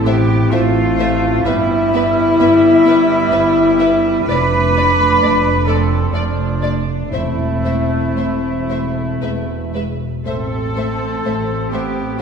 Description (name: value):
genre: classical, slow romantic movement for symphony orchestra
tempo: 57-66 BPM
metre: 3/4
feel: rubato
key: A minor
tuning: A4 = 440 Hz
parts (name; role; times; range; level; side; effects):
- silver concert flute; second line; 0.0-12.2 s; D5 to B5; -24 LUFS; left 3 dB; none
- warm clarinet; second line; 0.0-12.2 s; D4 to B4; -24 LUFS; left 4 dB; none
- mellow French horn section; sustained chords; 0.0-12.2 s; G#3 to E4; -20 LUFS; left 2 dB; none
- rich symphonic double bass section; bass; 0.0-12.1 s; E1 to A1; -20 LUFS; right 2 dB; none
- warm symphonic violin section; melody; 0.1-12.2 s; D5 to E5; -31 LUFS; left 5 dB; none
- mellow cor anglais; second line; 0.1-12.2 s; F3 to D4; -26 LUFS; right 3 dB; none
- rich symphonic violin section; second line; 0.1-12.2 s; B4 to D5; -29 LUFS; left 2 dB; none
- dark symphonic viola section; accompaniment; 0.1-12.2 s; G#3 to B3; -27 LUFS; equal; none
- warm symphonic cello section; bass; 0.1-12.2 s; D4 to B4; -19 LUFS; right 1 dB; none
- timpani; percussion; 7.1-8.6 s; none; barely audible; none; none
room: wet scoring stage reverb, RT60 2.1 s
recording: heard from further back in the room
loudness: -13 LUFS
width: side -6 dB against mid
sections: 0.0-12.2 A section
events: none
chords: 0.0 Am; 1.5 Em/G; 4.3 Dm/F; 7.1 Am/E; 9.2 E; 10.3 Am